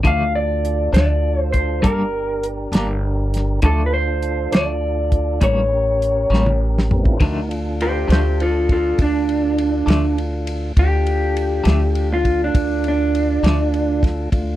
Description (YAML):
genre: slow blues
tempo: 67 BPM (dotted quarters)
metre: 12/8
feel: straight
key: D minor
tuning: A4 = 440 Hz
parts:
  - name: clean electric guitar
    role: accompaniment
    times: 0.0-13.6 s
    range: G2 to D4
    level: -22 LUFS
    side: left 2 dB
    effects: tremolo
  - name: tonewheel organ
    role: sustained chords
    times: 0.0-14.6 s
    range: G3 to C5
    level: -27 LUFS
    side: right 1 dB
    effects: slow rotary speaker, overdrive
  - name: warm soul drum kit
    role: drums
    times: 0.0-14.5 s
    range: hi-hat, kick drum, ride cymbal, snare drum, toms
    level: -19 LUFS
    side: equal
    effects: none
  - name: electric guitar through a small old amp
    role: melody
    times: 0.1-14.0 s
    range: D4 to F5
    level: -20 LUFS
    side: equal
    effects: none
  - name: upright bass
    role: bass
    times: 0.1-14.6 s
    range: G1 to D2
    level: -20 LUFS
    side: equal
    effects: none
room: little or no reverb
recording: dry, close 1970s-style studio recording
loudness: -16 LUFS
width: side -14 dB against mid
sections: 0.0-7.2 A section; 7.2-14.6 B section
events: drum fill 6.3-7.2; clean electric guitar solo 7.2-14.6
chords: 0.0 Dm; 1.8 Gm; 3.6 Dm; 5.4 A7b9; 7.2 Dm